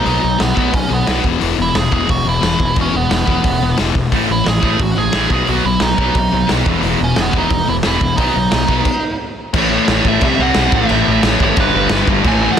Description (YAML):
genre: punk rock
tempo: 177 BPM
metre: 4/4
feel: straight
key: unclear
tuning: A4 = 441 Hz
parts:
  - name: nasal lead guitar with a parked wah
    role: melody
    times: 0.0-12.6 s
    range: B3 to G#5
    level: -19 LUFS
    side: right 4 dB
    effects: overdrive, tape echo
  - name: sludgy distorted guitar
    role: riff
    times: 0.0-12.6 s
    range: E2 to C4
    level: -18 LUFS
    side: left 10 dB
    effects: overdrive
  - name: fuzz picked electric bass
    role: bass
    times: 0.1-12.5 s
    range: E1 to C2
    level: -20 LUFS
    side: right 1 dB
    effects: overdrive
  - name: raw garage drum kit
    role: drums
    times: 0.1-12.6 s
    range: crash cymbal, hi-hat, kick drum, snare drum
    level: -18 LUFS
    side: equal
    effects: none
  - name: distorted electric guitar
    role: riff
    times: 4.1-12.6 s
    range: E2 to C4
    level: -20 LUFS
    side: right 16 dB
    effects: distortion
room: little or no reverb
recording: dense, heavily limited modern master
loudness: -12 LUFS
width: side -8 dB against mid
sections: 0.0-9.5 A section; 9.5-12.6 B section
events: stop 8.9-9.5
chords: 0.0 B; 1.3 E5; 4.1 A5; 5.3 B; 6.7 E5; 8.2 B; 9.5 A5; 10.2 C5; 10.7 A5; 11.6 G